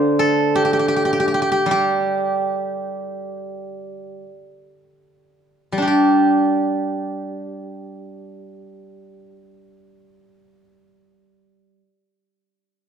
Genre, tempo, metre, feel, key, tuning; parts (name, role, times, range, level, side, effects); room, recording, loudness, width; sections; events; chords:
chinese traditional, Chinese solo plucked strings; 52-86 BPM; 4/4; rubato; G shang mode; A4 = 436 Hz
steel-string zither; solo; 0.0-11.8 s; D3 to C6; -18 LUFS; right 1 dB
moderate recital hall reverb, RT60 1.4 s; dark, warm production; -17 LUFS; side -8 dB against mid
0.0-5.9 A section; 5.9-10.2 B section
slowing down 0.0-5.9